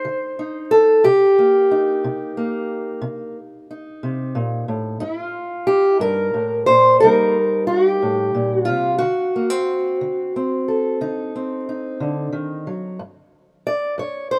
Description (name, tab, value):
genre	acoustic country blues, solo or duo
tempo	60 BPM (dotted quarters)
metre	12/8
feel	straight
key	G minor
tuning	A4 = 440 Hz
part	fingerpicked steel-string acoustic guitar	solo	0.0-14.4 s	G2 to D5	-19 LUFS	equal	none
room	light reverb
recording	rough home demo mix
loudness	-19 LUFS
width	mono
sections	0.0-13.0 A section; 13.0-14.4 B section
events	steel-string acoustic guitar solo 13.0-14.4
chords	0.0 D5; 1.0 Cm7; 5.0 Gm7; 7.0 Cm7; 9.0 D7b9; 13.0 G5